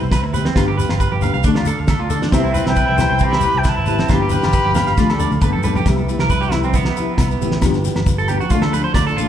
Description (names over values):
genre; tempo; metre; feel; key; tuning
highlife guitar band; 136 BPM; 4/4; straight; C major; A4 = 440 Hz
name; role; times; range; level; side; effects
nylon-string guitar; accompaniment; 0.0-9.3 s; E3 to A4; -24 LUFS; left 6 dB; none
tonewheel organ; sustained chords; 0.0-9.3 s; D4 to G5; -29 LUFS; equal; slow rotary speaker
fingered electric bass; bass; 0.0-9.3 s; G1 to G2; -21 LUFS; right 1 dB; none
electric guitar at the edge of break-up; arpeggios; 0.1-9.3 s; B3 to F5; -23 LUFS; right 5 dB; tape echo
damped 70s drum kit; drums; 0.1-9.1 s; kick drum, snare drum, toms; -20 LUFS; equal; vintage 12-bit sampler grit
agogo bells; percussion; 0.1-9.1 s; none; -32 LUFS; left 1 dB; none
shekere; percussion; 0.1-9.3 s; none; -28 LUFS; left 4 dB; none
congas; percussion; 0.3-9.3 s; none; -28 LUFS; equal; none
bright concert flute; melody; 2.3-5.4 s; E5 to B5; -20 LUFS; equal; none
bright trumpet; second line; 2.4-5.4 s; C4 to G4; -26 LUFS; left 2 dB; none
room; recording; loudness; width
moderate large studio reverb, RT60 1.3 s; band playing live in one room; -14 LUFS; side -10 dB against mid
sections
0.0-5.9 A section; 5.9-9.3 B section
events
drum fill 5.0-5.9; clean electric guitar solo 5.9-9.3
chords
0.0 Cmaj7; 0.6 G7; 1.4 Dm; 2.3 Cmaj7; 4.1 G7; 5.0 Dm; 5.4 Gadd9; 5.9 Cmaj7; 7.6 G7; 8.5 Dm